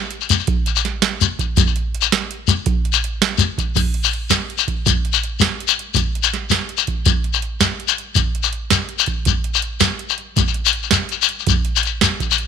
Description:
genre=highlife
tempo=109 BPM (dotted quarters)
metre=12/8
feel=straight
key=none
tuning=none
part: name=booming analog drum machine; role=drums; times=0.1-12.5 s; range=crash cymbal, hi-hat, kick drum, snare drum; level=-19 LUFS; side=right 4 dB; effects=none
part: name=shekere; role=percussion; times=0.2-12.4 s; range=none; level=-17 LUFS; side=left 7 dB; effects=none
room=little or no reverb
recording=1960s-style stereo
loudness=-16 LUFS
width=side -7 dB against mid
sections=0.0-3.8 A section; 3.8-12.5 B section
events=none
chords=none

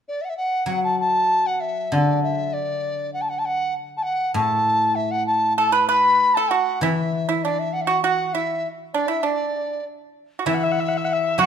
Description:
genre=chinese traditional, Chinese chamber ensemble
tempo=98 BPM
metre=2/4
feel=rubato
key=unclear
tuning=A4 = 438 Hz
part: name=mellow large dizi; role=melody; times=0.1-11.5 s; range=D5 to B5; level=-21 LUFS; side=left 1 dB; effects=none
part: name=guzheng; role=accompaniment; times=0.7-11.5 s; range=A2 to F#3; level=-26 LUFS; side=left 2 dB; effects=none
part: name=pipa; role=second line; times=5.6-11.5 s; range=D4 to B4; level=-23 LUFS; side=right 8 dB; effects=none
part: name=dark erhu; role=second line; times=10.5-11.5 s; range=E5 to F#5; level=-24 LUFS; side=left 5 dB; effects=none
room=moderate recital hall reverb, RT60 1.6 s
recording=minimal, uncompressed stereo recording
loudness=-19 LUFS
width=side -8 dB against mid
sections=0.7-10.5 A section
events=none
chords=none

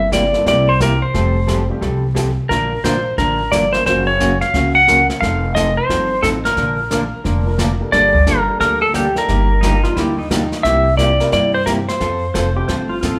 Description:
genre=country, western swing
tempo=177 BPM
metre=4/4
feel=swing 64% on 8ths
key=Bb major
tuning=A4 = 439 Hz
part: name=clean lap steel guitar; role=melody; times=0.0-12.5 s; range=G4 to Gb5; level=-18 LUFS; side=equal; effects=none
part: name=upright bass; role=bass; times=0.0-13.2 s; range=F1 to G2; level=-22 LUFS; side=equal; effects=none
part: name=hollow-body jazz guitar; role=accompaniment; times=0.1-13.2 s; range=C3 to Bb4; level=-24 LUFS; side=equal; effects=none
part: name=jazz brush drum kit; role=drums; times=0.1-13.2 s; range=brushed snare drum, hi-hat, kick drum, snare drum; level=-26 LUFS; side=equal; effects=none
part: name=warm upright piano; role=accompaniment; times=0.3-13.0 s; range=F3 to C5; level=-30 LUFS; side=equal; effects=none
part: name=pedal steel guitar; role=second line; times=9.6-13.2 s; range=Eb4 to C5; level=-26 LUFS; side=equal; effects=none
room=moderate large studio reverb, RT60 1.0 s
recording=band playing live in one room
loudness=-16 LUFS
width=mono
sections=0.0-13.2 A section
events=none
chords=0.0 C7/G; 1.1 Fadd9; 2.5 Bb; 3.9 Gb; 5.2 F7; 6.6 Bb; 7.9 Gmadd9; 9.3 Ebmaj7/G; 10.6 C7; 12.0 F

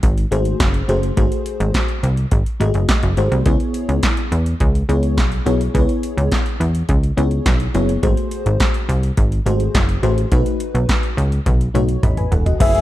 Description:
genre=early-eighties boogie funk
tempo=105 BPM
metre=4/4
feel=straight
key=C# minor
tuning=A4 = 441 Hz
part: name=plucky analog bass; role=bass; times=0.0-12.8 s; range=E1 to E2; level=-18 LUFS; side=equal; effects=none
part: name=electro analog drum machine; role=drums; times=0.0-12.8 s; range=crash cymbal, handclaps, hi-hat, kick drum, snare drum, toms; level=-19 LUFS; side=equal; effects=none
part: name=FM electric piano with soft pad layer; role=accompaniment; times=0.3-12.8 s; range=A3 to B5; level=-22 LUFS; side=left 2 dB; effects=chorus, tremolo
part: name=soft octave-layered synth lead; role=melody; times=12.6-12.8 s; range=E5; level=-15 LUFS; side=left 1 dB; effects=chorus
part: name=warm symphonic string section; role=sustained chords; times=12.6-12.8 s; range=E3 to G#4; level=-27 LUFS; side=left 2 dB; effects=none
room=digital ambience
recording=dark, warm production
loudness=-15 LUFS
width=side -15 dB against mid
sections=0.0-12.6 A section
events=drum fill 11.5-12.6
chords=0.0 G#7b9; 3.5 C#m7; 8.0 G#7b9; 10.3 B7

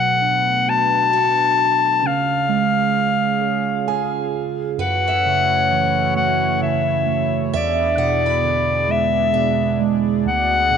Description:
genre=acoustic folk-pop ballad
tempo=44 BPM (dotted quarters)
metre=6/8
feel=straight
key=F# minor from 4.8 s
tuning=A4 = 442 Hz
part: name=bright clarinet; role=melody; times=0.0-10.8 s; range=D5 to A5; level=-18 LUFS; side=left 4 dB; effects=none
part: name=bright tine electric piano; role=accompaniment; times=0.0-10.8 s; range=D2 to G#5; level=-22 LUFS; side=right 8 dB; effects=phaser
part: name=chorused pulse-width pad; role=sustained chords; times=0.0-10.8 s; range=D3 to E#5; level=-27 LUFS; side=left 1 dB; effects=none
part: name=picked steel-string acoustic guitar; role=arpeggios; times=1.1-10.8 s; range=F#4 to B5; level=-29 LUFS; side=right 8 dB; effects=none
room=moderate plate reverb, RT60 2.9 s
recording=1960s-style stereo, nothing above 10.3 kHz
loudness=-16 LUFS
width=side -7 dB against mid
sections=0.0-4.8 A section; 4.8-10.8 B section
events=none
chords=0.0 Bm7; 2.0 C#; 4.8 F#m7; 7.5 E7; 10.2 G#m7b5/D

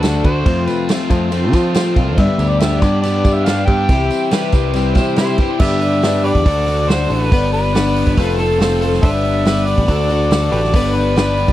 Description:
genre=folk rock and heartland rock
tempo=140 BPM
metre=4/4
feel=straight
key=G mixolydian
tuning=A4 = 440 Hz
part: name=overdriven harmonica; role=melody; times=0.0-11.5 s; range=G4 to G5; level=-20 LUFS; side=equal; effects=none
part: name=picked plugged-in twelve-string acoustic guitar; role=accompaniment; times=0.0-11.5 s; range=F2 to B4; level=-20 LUFS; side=left 5 dB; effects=none
part: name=bright tonewheel organ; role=sustained chords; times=0.0-11.5 s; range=A3 to B4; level=-30 LUFS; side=right 3 dB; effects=overdrive, stopped rotary speaker
part: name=crunchy overdriven guitar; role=riff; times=0.0-11.5 s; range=F2 to B4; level=-24 LUFS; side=right 1 dB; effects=none
part: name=picked electric bass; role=bass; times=0.0-11.5 s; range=F1 to F3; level=-18 LUFS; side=right 1 dB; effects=none
part: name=vintage drum kit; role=drums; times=0.0-11.5 s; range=crash cymbal, hi-hat, kick drum, snare drum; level=-17 LUFS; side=right 1 dB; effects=none
part: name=tambourine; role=percussion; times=0.0-5.5 s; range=none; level=-36 LUFS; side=right 11 dB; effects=none
part: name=overdriven slide guitar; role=second line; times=4.3-5.5, 8.2-8.9 s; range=A4 to C5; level=-22 LUFS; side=left 2 dB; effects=none
room=little or no reverb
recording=dry, close 1970s-style studio recording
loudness=-13 LUFS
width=side -14 dB against mid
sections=0.0-5.6 A section; 5.6-11.5 B section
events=none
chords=0.5 F; 2.2 G; 3.9 C; 5.6 G; 6.5 D; 7.3 G; 8.2 F; 9.0 G; 9.9 D; 10.7 G

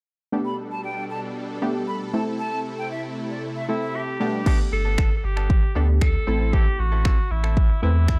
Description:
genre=dance-pop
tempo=116 BPM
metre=4/4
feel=straight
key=G major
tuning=A4 = 438 Hz
part: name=glassy wavetable pluck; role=accompaniment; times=0.3-8.2 s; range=A3 to B4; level=-30 LUFS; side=equal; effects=chorus, sidechain pumping
part: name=supersaw chords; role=sustained chords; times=0.3-4.5 s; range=B2 to A4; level=-34 LUFS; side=equal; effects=sidechain pumping
part: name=breathy bright concert flute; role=melody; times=0.5-4.0 s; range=D5 to B5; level=-34 LUFS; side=equal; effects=sidechain pumping, dub echo
part: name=edgy alto saxophone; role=melody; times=3.7-8.2 s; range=E4 to A4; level=-32 LUFS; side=equal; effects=none
part: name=direct-recorded clean electric guitar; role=riff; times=4.5-8.1 s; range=B3 to A4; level=-39 LUFS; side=equal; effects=subtle chorus
part: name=pop drum kit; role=drums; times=4.5-8.2 s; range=crash cymbal, finger snaps, kick drum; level=-23 LUFS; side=equal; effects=none
part: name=warm sub bass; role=bass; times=4.7-8.2 s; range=G1 to E2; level=-24 LUFS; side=equal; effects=sidechain pumping
room=light reverb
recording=dark, warm production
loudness=-23 LUFS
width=mono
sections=0.3-4.5 A section; 4.5-8.2 B section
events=none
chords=0.3 Gadd9; 2.1 Am; 4.2 Gadd9; 6.3 Am

